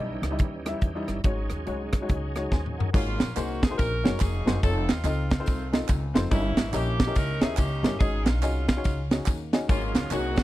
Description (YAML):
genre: uptempo gospel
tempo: 142 BPM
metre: 4/4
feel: swing 62% on 8ths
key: unclear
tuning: A4 = 440 Hz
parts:
  - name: clear upright piano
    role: accompaniment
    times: 0.0-10.4 s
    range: G2 to Ab5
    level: -32 LUFS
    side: left 3 dB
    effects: none
  - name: bright tonewheel organ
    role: sustained chords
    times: 0.0-2.9, 9.7-10.4 s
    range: Fb3 to Ab4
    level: -37 LUFS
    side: right 3 dB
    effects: fast rotary speaker, overdrive, chorus vibrato
  - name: upright bass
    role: bass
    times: 0.0-10.4 s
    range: F1 to Fb2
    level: -29 LUFS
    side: equal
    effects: none
  - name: crisp fusion drum kit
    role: drums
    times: 0.2-10.4 s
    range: crash cymbal, hi-hat, kick drum, ride cymbal, rim click, snare drum, toms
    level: -24 LUFS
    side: right 1 dB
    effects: none
  - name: edgy saxophone section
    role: melody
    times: 2.9-10.4 s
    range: A3 to Bb4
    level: -33 LUFS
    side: equal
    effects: none
  - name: tambourine and handclaps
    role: percussion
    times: 3.0-10.4 s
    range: none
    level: -41 LUFS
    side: right 6 dB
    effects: none
room: little or no reverb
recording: dry, close 1970s-style studio recording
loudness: -23 LUFS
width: side -16 dB against mid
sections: 0.0-2.9 A section; 2.9-10.4 B section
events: drum fill 2.5-2.9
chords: 0.0 Eb7b9; 1.2 Ab7sus4; 2.9 Ab9sus4; 4.6 F7b13; 6.3 Eb7b9/G; 8.0 Ab9sus4